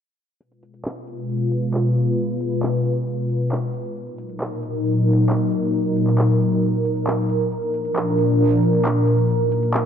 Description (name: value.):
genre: uplifting trance.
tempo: 135 BPM.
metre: 4/4.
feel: straight.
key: unclear.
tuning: A4 = 440 Hz.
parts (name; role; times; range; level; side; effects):
lush unison pad; sustained chords; 1.2-9.9 s; Bb2 to Cb5; -18 LUFS; equal; chorus.
techno drum kit; drums; 0.4-9.8 s; handclaps, hi-hat; -30 LUFS; equal; overdrive, low-pass filter on hats, low-pass filter on snare.
room: moderate lush hall reverb, RT60 1.9 s, digital ambience.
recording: low-pass filter.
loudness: -18 LUFS.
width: side -8 dB against mid.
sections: 0.4-9.9 A section.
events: filter sweep on drum 0.4-9.9; filter sweep on analog synth pad 0.4-9.9; filter sweep 0.4-9.9.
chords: 0.4 Fdim; 4.0 Ebm; 7.5 Bb; 9.3 Ebm.